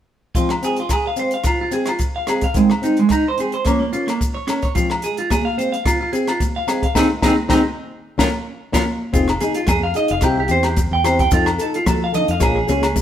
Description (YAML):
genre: highlife guitar band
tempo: 109 BPM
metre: 4/4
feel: swing 54% on 16ths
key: F minor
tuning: A4 = 440 Hz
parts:
  - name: compact cocktail drum kit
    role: drums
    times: 0.3-13.0 s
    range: hi-hat, kick drum, rim click, snare drum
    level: -22 LUFS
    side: equal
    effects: none
  - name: nylon-string guitar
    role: accompaniment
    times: 0.4-12.9 s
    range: Eb3 to A4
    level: -23 LUFS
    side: left 4 dB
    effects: none
  - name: clean electric guitar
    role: arpeggios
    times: 0.4-12.9 s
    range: Ab3 to G5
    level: -19 LUFS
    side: right 2 dB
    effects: none
  - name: maracas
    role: percussion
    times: 0.4-13.0 s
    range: none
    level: -36 LUFS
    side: left 4 dB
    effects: none
  - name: agogo bells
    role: percussion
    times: 0.5-13.0 s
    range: none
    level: -27 LUFS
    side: left 3 dB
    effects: none
  - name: congas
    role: percussion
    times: 4.8-13.0 s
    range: none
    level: -26 LUFS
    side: left 1 dB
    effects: none
  - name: fingered electric bass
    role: bass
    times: 9.1-13.0 s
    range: F1 to F3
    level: -22 LUFS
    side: equal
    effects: none
room: moderate stone room reverb, RT60 1.2 s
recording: band playing live in one room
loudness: -16 LUFS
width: side -10 dB against mid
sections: 0.4-9.1 A section; 9.1-13.0 B section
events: band accent 7.0-9.1; drum fill 8.6-9.1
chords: 0.4 Fm; 2.6 Ab; 3.7 Bbm; 4.8 Fm; 7.0 Ab; 8.0 Bbm; 9.1 Fm7; 10.2 C; 11.3 F7; 12.4 Bbm7